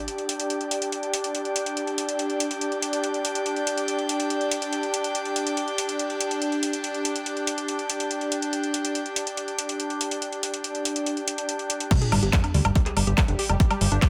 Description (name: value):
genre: psychedelic trance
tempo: 142 BPM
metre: 4/4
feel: straight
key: unclear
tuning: A4 = 440 Hz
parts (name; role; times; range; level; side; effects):
- evolving wavetable pad; sustained chords; 0.0-14.1 s; G3 to G4; -33 LUFS; equal; phaser, built-in reverb, sidechain pumping
- sub drop; sound effects; 0.0-0.1, 11.9-13.6 s; none; -32 LUFS; equal; none
- airy breathy pad; texture; 0.0-11.9 s; G4 to G5; -32 LUFS; equal; chorus, sidechain pumping
- techno drum kit; drums; 0.1-14.1 s; crash cymbal, handclaps, hi-hat, woodblock; -31 LUFS; equal; none
- woody wave-folded pluck; riff; 11.9-14.1 s; G3 to Ab4; -31 LUFS; equal; chorus, sidechain pumping, tape echo
- electronic kick drum; drums; 11.9-14.1 s; none; -23 LUFS; equal; none
- fat analog bass; bass; 12.1-14.0 s; F1 to D2; -25 LUFS; equal; none
room: moderate digital room reverb, RT60 0.9 s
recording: none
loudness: -26 LUFS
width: mono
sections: 0.0-11.9 A section; 11.9-14.1 B section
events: drop 11.9-14.1; impact 11.9-13.6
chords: 0.0 G5